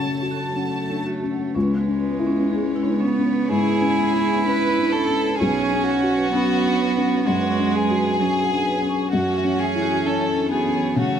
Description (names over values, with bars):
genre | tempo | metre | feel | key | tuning
neoclassical piano and strings | 64 BPM | 4/4 | rubato | unclear | A4 = 442 Hz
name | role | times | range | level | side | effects
warm chamber violin section | melody | 0.0-11.2 s | F#4 to A5 | -24 LUFS | equal | none
rich cello | second line | 0.0-11.2 s | F#3 to E4 | -24 LUFS | right 6 dB | none
felt-muted upright piano | accompaniment | 0.0-11.2 s | B1 to F#5 | -22 LUFS | left 3 dB | none
warm studio string section | sustained chords | 0.0-11.2 s | E3 to C#5 | -32 LUFS | right 3 dB | none
vibraphone with medium mallets | arpeggios | 0.3-11.1 s | C#4 to C#6 | -31 LUFS | right 2 dB | tape echo
room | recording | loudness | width
moderate concert hall reverb, RT60 2.3 s | close, detailed microphones | -18 LUFS | side -8 dB against mid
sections
0.0-1.5 A section; 1.5-11.2 B section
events
none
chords
0.0 F#m; 1.5 C#m7; 5.4 Bsus2; 9.1 F#m7